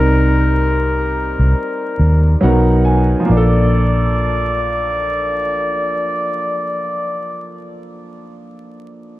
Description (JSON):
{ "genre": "lo-fi hip hop", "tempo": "69 BPM", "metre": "4/4", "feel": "swing 62% on 16ths", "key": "Bb major", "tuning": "A4 = 440 Hz", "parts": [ { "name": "trumpet with plunger mute", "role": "melody", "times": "0.0-7.5 s", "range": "Bb4 to D5", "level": "-21 LUFS", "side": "left 1 dB", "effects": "tape echo" }, { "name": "clear upright piano", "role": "accompaniment", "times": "0.0-9.2 s", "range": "F3 to Ab5", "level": "-20 LUFS", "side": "right 1 dB", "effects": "none" }, { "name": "vintage muted fingered electric bass", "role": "bass", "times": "0.0-8.2 s", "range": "Bb1 to Eb2", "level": "-15 LUFS", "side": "equal", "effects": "none" } ], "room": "moderate small room reverb, RT60 0.5 s", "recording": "dark, warm production, vinyl crackle", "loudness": "-14 LUFS", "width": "side -16 dB against mid", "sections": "0.0-3.3 A section; 3.3-6.8 B section", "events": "none", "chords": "0.0 Cm7; 2.4 Bmaj7; 3.3 Bbmaj7" }